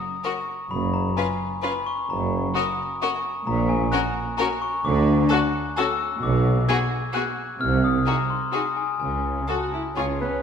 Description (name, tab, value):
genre	cinematic, playful, whimsical film cue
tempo	130 BPM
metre	3/4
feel	straight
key	F# major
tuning	A4 = 439 Hz
part	glockenspiel with rubber mallets	melody	0.0-9.9 s	G#5 to G#6	-26 LUFS	left 4 dB	none
part	clear chamber violin section	melody	0.2-10.0 s	G#4 to B4	-31 LUFS	left 3 dB	none
part	rich chamber violin section	second line	0.2-10.0 s	E#4 to F#4	-30 LUFS	left 4 dB	none
part	rich chamber viola section	accompaniment	0.3-10.4 s	B3 to F#4	-34 LUFS	equal	none
part	rich studio cello section	bass	0.7-10.4 s	F#2 to C#4	-28 LUFS	right 1 dB	none
part	rich studio double bass section	bass	0.7-10.4 s	F#1 to D2	-27 LUFS	right 2 dB	none
part	warm tuba	bass	0.7-10.4 s	F#1 to D2	-29 LUFS	right 2 dB	none
part	clear clarinet	second line	10.0-10.4 s	B4 to C#5	-28 LUFS	left 1 dB	none
part	mellow concert flute	second line	10.0-10.3 s	B5 to C#6	-37 LUFS	left 4 dB	none
room	wet scoring stage reverb, RT60 1.6 s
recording	minimal, uncompressed stereo recording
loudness	-21 LUFS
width	side -7 dB against mid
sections	0.0-10.4 A section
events	none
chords	0.0 N.C.; 0.7 C#7(no3)/F# (rootless); 3.5 F#/A#; 4.8 D; 6.2 G#m7b5/B; 7.6 G#/B#; 9.0 F#m/C#; 10.0 N.C.